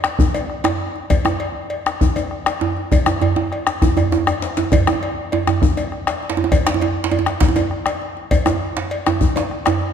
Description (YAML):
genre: west african traditional, West African drum ensemble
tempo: 133 BPM (dotted quarters)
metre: 12/8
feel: straight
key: none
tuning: none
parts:
  - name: bombo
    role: percussion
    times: 0.0-9.8 s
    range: none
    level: -20 LUFS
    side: left 1 dB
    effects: none
  - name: djembe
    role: percussion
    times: 0.0-9.9 s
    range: none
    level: -24 LUFS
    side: left 7 dB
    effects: none
  - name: cowbell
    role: percussion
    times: 0.3-9.8 s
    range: none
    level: -27 LUFS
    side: left 3 dB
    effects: none
  - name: djembe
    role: percussion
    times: 0.6-9.8 s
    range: none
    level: -20 LUFS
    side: right 6 dB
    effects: none
room: moderate concert hall reverb, RT60 1.8 s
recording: none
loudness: -16 LUFS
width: side -8 dB against mid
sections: 0.0-9.9 A section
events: drum fill 4.0-4.7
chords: none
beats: 0.20 0.65 | 1.10 1.56 2.01 2.46 | 2.91 3.37 3.82 4.27 | 4.72 5.17 5.62 6.07 | 6.52 6.97 7.42 7.87 | 8.32 8.77 9.21 9.66